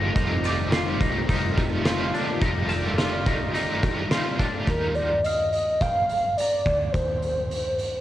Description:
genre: dream pop.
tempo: 106 BPM.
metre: 4/4.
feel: straight.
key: unclear.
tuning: A4 = 439 Hz.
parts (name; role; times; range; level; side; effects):
cranked stack guitar; accompaniment; 0.0-5.2 s; F2 to G4; -29 LUFS; right 2 dB; overdrive, tremolo, analog chorus, cassette tape.
string machine, full ensemble; sustained chords; 0.0-4.7 s; Eb3 to D5; -31 LUFS; left 1 dB; phaser, ensemble chorus, cassette tape.
semi-hollow electric guitar; arpeggios; 0.0-4.7 s; D4 to F4; -30 LUFS; left 2 dB; wide subtle chorus, cassette tape, analog delay.
vintage muted fingered electric bass; bass; 0.0-8.0 s; F1 to Eb2; -31 LUFS; equal; none.
oversized low-tuned drum kit; drums; 0.2-7.9 s; hi-hat, kick drum, snare drum; -26 LUFS; equal; cassette tape.
guzheng; texture; 0.5-7.8 s; D5 to Bb5; -36 LUFS; equal; cassette tape, analog delay.
warbly nostalgic lead; melody; 4.7-8.0 s; Bb4 to F5; -24 LUFS; equal; chorus, tremolo, cassette tape, analog delay.
room: light reverb, small room ambience.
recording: home recording on cassette.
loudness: -22 LUFS.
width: side -13 dB against mid.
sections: 0.1-4.7 A section; 4.7-8.0 B section.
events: none.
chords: 0.1 F9; 4.7 Ebmaj9.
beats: | 0.15 0.71 1.28 1.85 | 2.41 2.98 3.55 4.11 | 4.68 5.24 5.81 6.38 | 6.94 7.51.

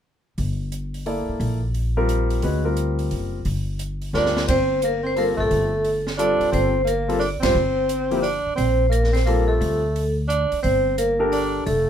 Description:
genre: modal jazz.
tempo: 176 BPM.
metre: 3/4.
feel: swing 64% on 8ths.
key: G minor.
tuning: A4 = 438 Hz.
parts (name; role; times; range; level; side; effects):
upright bass; bass; 0.4-11.9 s; F1 to D2; -24 LUFS; equal; none.
open jazz drum kit; drums; 0.4-11.8 s; hi-hat, kick drum, ride cymbal, snare drum; -33 LUFS; right 2 dB; none.
warm concert grand piano; accompaniment; 1.1-11.6 s; F3 to D5; -25 LUFS; left 2 dB; none.
breathy tenor saxophone; second line; 4.1-11.9 s; A3 to D4; -25 LUFS; right 4 dB; none.
vibraphone with medium hard mallets; melody; 4.2-11.9 s; A4 to D5; -22 LUFS; equal; none.
room: light reverb.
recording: minimal, uncompressed stereo recording.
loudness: -19 LUFS.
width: side -9 dB against mid.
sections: 0.4-4.5 A section; 4.5-11.9 B section.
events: drum fill 4.1-4.5; band accent 7.4.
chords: 0.4 Gm11.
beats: | 0.38 0.72 1.07 | 1.41 1.75 2.09 | 2.43 2.77 3.11 | 3.46 3.80 4.14 | 4.48 4.82 5.16 | 5.50 5.85 6.19 | 6.53 6.87 7.21 | 7.56 7.90 8.24 | 8.58 8.93 9.27 | 9.61 9.95 10.29 | 10.63 10.97 11.31 | 11.66.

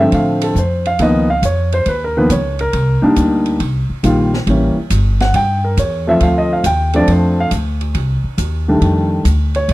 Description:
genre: jazz piano trio.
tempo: 138 BPM.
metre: 4/4.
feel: swing 68% on 8ths.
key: unclear.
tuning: A4 = 440 Hz.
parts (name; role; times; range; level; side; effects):
warm grand piano; melody; 0.0-9.7 s; D3 to G5; -14 LUFS; equal; none.
upright bass; bass; 0.0-9.7 s; G1 to A2; -16 LUFS; equal; none.
open jazz drum kit; drums; 0.1-9.7 s; hi-hat, kick drum, ride cymbal, snare drum; -25 LUFS; right 1 dB; none.
room: studio reverb.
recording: dry, close 1970s-style studio recording.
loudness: -12 LUFS.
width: side -18 dB against mid.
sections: 0.0-9.7 A section.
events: none.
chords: 0.0 Bbmaj7 (rootless); 1.0 Db13; 2.7 Cm9; 4.5 A7b9; 6.2 Dm7; 8.0 Cm; 8.8 F13.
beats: 0.13 0.56 | 1.00 1.43 1.86 2.30 | 2.73 3.17 3.60 4.04 | 4.47 4.91 5.34 5.78 | 6.21 6.65 7.08 7.52 | 7.95 8.38 8.82 9.25 | 9.69.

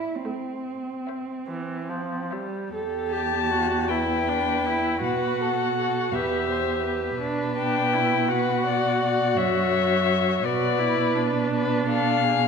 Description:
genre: classical, slow romantic movement for string quartet.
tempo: 47-58 BPM (dotted quarters).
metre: 6/8.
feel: rubato.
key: E minor.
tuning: A4 = 440 Hz.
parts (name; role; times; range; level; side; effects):
muted violin; melody; 0.0-12.5 s; D5 to A5; -26 LUFS; left 8 dB; none.
muted violin; second line; 0.0-12.5 s; G4 to D5; -29 LUFS; left 2 dB; none.
muted viola; accompaniment; 0.0-12.5 s; E3 to A4; -27 LUFS; right 3 dB; none.
muted cello; bass; 0.0-12.5 s; E2 to E4; -28 LUFS; right 3 dB; none.
room: wet concert hall reverb, RT60 1.8 s.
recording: minimal, uncompressed stereo recording.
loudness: -22 LUFS.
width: side -6 dB against mid.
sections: 0.0-2.7 A section; 2.7-12.5 B section.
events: none.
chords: 0.3 Am; 2.7 Em; 5.0 B5; 6.1 Em; 7.2 Bm; 9.4 F#5; 10.4 Bm; 11.5 E7/B (rootless).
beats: | 0.26 1.48 | 2.73 3.90 | 5.03 6.14 | 7.21 8.30 | 9.37 10.44 | 11.53.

